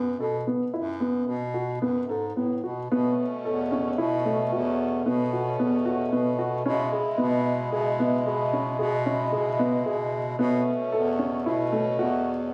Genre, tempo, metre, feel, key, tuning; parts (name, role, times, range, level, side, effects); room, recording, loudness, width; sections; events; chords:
contemporary instrumental, chamber music in an uneven meter; 112 BPM; 7/4; straight; A4 = 440 Hz
dark baby grand piano; arpeggios; 0.0-12.3 s; A3 to A4; -29 LUFS; equal
clear bass clarinet; bass; 0.0-12.5 s; E2 to B2; -32 LUFS; equal
hand-pumped harmonium; sustained chords; 2.9-12.5 s; B2 to E4; -31 LUFS; equal
moderate recital hall reverb, RT60 1.5 s; recorded on a phone in the room, club reverb; -26 LUFS; mono
0.0-2.9 A section; 2.9-12.5 B section
0.0 B7(no3); 2.9 Aadd9; 6.7 E6/B; 10.4 Aadd9